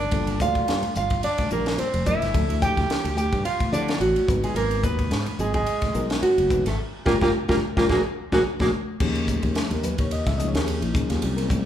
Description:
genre	electric jazz fusion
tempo	108 BPM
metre	4/4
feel	swing 55% on 16ths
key	unclear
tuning	A4 = 440 Hz
part	nylon-string guitar	melody	0.0-8.7 s	F4 to G5	-24 LUFS	right 1 dB	none
part	breathy tenor saxophone	second line	0.0-8.7 s	Gb3 to G4	-31 LUFS	right 2 dB	none
part	bright reed electric piano	accompaniment	0.0-11.7 s	F3 to Fb5	-31 LUFS	left 4 dB	none
part	sustaining fretless electric bass	bass	0.0-11.6 s	F1 to D3	-27 LUFS	equal	none
part	crisp fusion drum kit	drums	0.1-11.6 s	crash cymbal, hi-hat, kick drum, ride cymbal, snare drum	-27 LUFS	equal	none
part	congas	percussion	0.1-11.6 s	none	-33 LUFS	left 1 dB	none
room	moderate large studio reverb, RT60 1.1 s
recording	band playing live in one room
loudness	-21 LUFS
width	side -10 dB against mid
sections	0.0-9.0 A section; 9.0-11.7 B section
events	band accent 6.8-9.0; drum fill 8.5-9.0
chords	0.1 Gm9; 2.3 Dm9; 4.3 Abm9; 6.8 Gm7; 7.9 Bbaug7; 9.0 Eb9sus4; 10.9 Ab9sus4

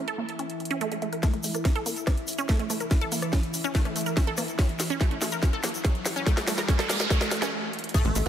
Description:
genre	psychedelic trance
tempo	143 BPM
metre	4/4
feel	straight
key	A major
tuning	A4 = 440 Hz
part	evolving wavetable pad	sustained chords	0.0-8.3 s	E3 to E4	-35 LUFS	left 1 dB	chorus, built-in reverb, sidechain pumping
part	wide unison pluck	riff	0.0-8.3 s	A3 to Bb4	-32 LUFS	moving between left 2 dB and right 5 dB	auto-pan, sidechain pumping, digital delay
part	garage drum kit	drums	0.1-8.3 s	crash cymbal, hi-hat, rim click, snare drum	-31 LUFS	equal	studio ambience
part	electronic kick drum	drums	1.2-8.0 s	none	-24 LUFS	equal	studio ambience
part	egg shaker	percussion	1.2-8.2 s	none	-36 LUFS	left 3 dB	none
part	riser, noise sweep and impact	sound effects	4.5-8.3 s	none	-34 LUFS	right 2 dB	none
part	swarming rave lead	melody	7.9-8.3 s	A3 to A4	-30 LUFS	left 1 dB	chorus, phaser, sidechain pumping
part	tight sequencer bass	bass	8.0-8.3 s	A1	-26 LUFS	equal	tube saturation
room	light reverb, digital ambience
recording	none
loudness	-24 LUFS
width	side -10 dB against mid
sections	0.0-1.2 A section; 1.2-7.9 B section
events	filter sweep on synth arpeggio sound 0.0-1.2, 1.2-7.9; build-up 1.2-7.9; drum fill 1.2-7.5, 7.7; riser 4.5-7.5; noise sweep 6.3-7.9; stop 7.5-7.9; impact 7.9-8.3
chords	0.0 A5

